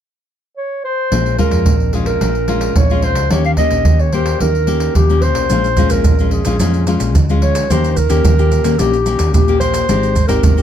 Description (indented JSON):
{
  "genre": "samba and choro",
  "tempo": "110 BPM",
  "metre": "4/4",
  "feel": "straight",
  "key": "Bb minor",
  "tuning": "A4 = 440 Hz",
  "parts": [
    { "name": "dark clarinet", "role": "melody", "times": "0.6-10.6 s", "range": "G4 to F5", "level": "-18 LUFS", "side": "right 1 dB", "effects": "none" },
    { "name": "nylon-string guitar", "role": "accompaniment", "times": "1.1-10.6 s", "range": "F2 to G4", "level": "-19 LUFS", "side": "left 8 dB", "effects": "none" },
    { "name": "woody fretless electric bass", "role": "bass", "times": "1.1-10.6 s", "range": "Ab1 to F2", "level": "-18 LUFS", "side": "equal", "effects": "none" },
    { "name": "surdo, pandeiro and maracas", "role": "percussion", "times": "1.1-10.6 s", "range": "none", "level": "-15 LUFS", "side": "right 1 dB", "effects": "none" }
  ],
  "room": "light reverb",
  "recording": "close, detailed microphones",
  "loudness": "-12 LUFS",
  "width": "side -9 dB against mid",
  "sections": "0.0-1.1 A section; 1.1-5.5 B section; 5.5-10.6 C section",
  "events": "none",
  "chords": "0.0 N.C.; 1.1 Bbm7; 3.3 Eb7; 5.5 Bbm7; 7.7 Eb7; 9.9 Abmaj7"
}